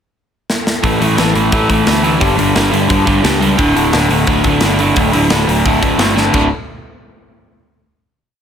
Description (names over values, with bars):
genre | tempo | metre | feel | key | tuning
punk rock | 174 BPM | 4/4 | straight | unclear | A4 = 437 Hz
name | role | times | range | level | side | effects
tight metal drum kit | drums | 0.5-6.4 s | crash cymbal, hi-hat, kick drum, snare drum | -17 LUFS | equal | none
crunchy overdriven guitar | riff | 0.8-6.5 s | D2 to A3 | -12 LUFS | equal | none
overdriven picked electric bass | bass | 0.8-6.5 s | D1 to D2 | -18 LUFS | equal | none
room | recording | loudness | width
little or no reverb | none | -10 LUFS | side -8 dB against mid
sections
0.0-0.8 pickup bar; 0.8-6.3 verse; 6.3-7.7 final chord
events
drum fill 0.5-0.8, 6.2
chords
0.0 N.C.; 0.8 A5; 2.2 G5; 3.6 D5